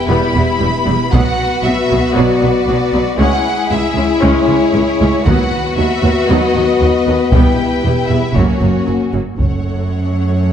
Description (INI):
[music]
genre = cinematic, epic orchestral film score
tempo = 116 BPM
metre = 4/4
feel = straight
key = unclear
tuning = A4 = 440 Hz
[part]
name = warm symphonic violin section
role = melody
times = 0.0-10.5 s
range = C#5 to B5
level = -21 LUFS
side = left 2 dB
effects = none
[part]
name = rich symphonic violin section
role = second line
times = 0.0-10.5 s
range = C#4 to C#5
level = -20 LUFS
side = left 3 dB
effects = none
[part]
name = dark French horn section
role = sustained chords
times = 0.0-10.5 s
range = G#3 to G4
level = -18 LUFS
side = left 3 dB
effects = none
[part]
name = warm symphonic viola section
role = accompaniment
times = 0.1-10.5 s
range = F#3 to A4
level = -21 LUFS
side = right 1 dB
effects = none
[part]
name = clear symphonic double bass section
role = bass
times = 0.1-9.9 s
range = E1 to D#2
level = -19 LUFS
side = right 3 dB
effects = none
[part]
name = rich symphonic cello section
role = bass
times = 0.1-10.5 s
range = C#2 to B2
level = -19 LUFS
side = right 2 dB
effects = none
[part]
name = taiko ensemble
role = drums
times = 1.1-2.1, 5.3-10.4 s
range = none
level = -17 LUFS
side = equal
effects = none
[sound]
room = moderate scoring stage reverb, RT60 1.8 s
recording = dark, warm production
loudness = -11 LUFS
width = side -9 dB against mid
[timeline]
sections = 0.0-9.4 A section; 9.4-10.5 B section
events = none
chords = 0.0 Em; 1.1 Bm; 3.2 C#m; 5.3 B/D#; 7.3 Em; 8.3 F#; 9.4 F#m